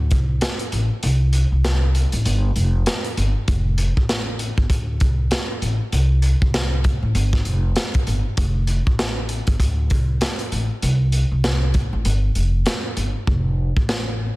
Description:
hip hop, boom-bap hip-hop; 98 BPM; 4/4; swing 59% on 16ths; F major; A4 = 440 Hz
upright bass; bass; 0.0-14.3 s; F1 to D2; -19 LUFS; equal
crunchy breakbeat drum kit; drums; 0.1-14.1 s; hi-hat, kick drum, snare drum; -22 LUFS; equal
little or no reverb; dense, heavily limited modern master; -18 LUFS; side -20 dB against mid
0.0-13.3 A section; 13.3-14.4 B section
kick muted 1.0-3.5, 12.1-13.3; hi-hats muted 13.3-14.4

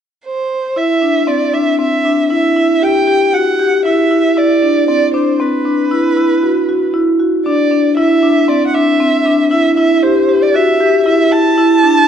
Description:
contemporary instrumental, contemporary; 117 BPM; 7/4; straight; A4 = 441 Hz
warm violin; melody; 0.2-12.1 s; B4 to A5; -15 LUFS; right 3 dB
marimba with medium hard mallets; arpeggios; 0.8-12.0 s; C4 to G4; -12 LUFS; left 1 dB
moderate concert hall reverb, RT60 2.4 s; dark, warm production, nothing above 10.7 kHz; -10 LUFS; side -8 dB against mid
0.8-12.1 A section
0.0 N.C.; 0.8 Cadd9; 4.4 Cmaj9#11; 8.0 Cadd9

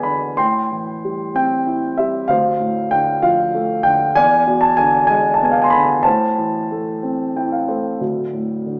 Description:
classical, lyrical solo piano; 63 BPM (dotted quarters); 6/8; rubato; A minor; A4 = 441 Hz
dark concert grand piano; solo; 0.0-8.8 s; D1 to C6; -18 LUFS; equal
moderate scoring stage reverb, RT60 2.0 s; recorded in a church or concert hall, small speaker sound; -17 LUFS; mono
0.0-8.0 A section
grand piano fill 7.0-8.0
0.4 Am7; 2.3 Dm7; 4.2 E7; 6.1 Am; 8.0 D5

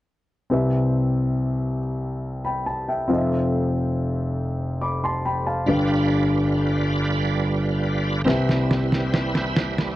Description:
slow gospel; 46 BPM (dotted quarters); 6/8; straight; C major; A4 = 437 Hz
warm grand piano; accompaniment; 0.5-10.0 s; F1 to D6; -21 LUFS; left 1 dB
bright tonewheel organ; sustained chords; 5.7-10.0 s; G3 to B4; -26 LUFS; right 3 dB; slow rotary speaker, chorus vibrato
electronic snare drum; drums; 8.3-10.0 s; -24 LUFS; right 1 dB
little or no reverb; dry, close 1970s-style studio recording; -20 LUFS; side -15 dB against mid
0.5-10.0 A section
drum fill 8.3-10.0
0.5 Cmaj7; 3.1 Fmaj7; 5.7 G7; 8.3 Cmaj7

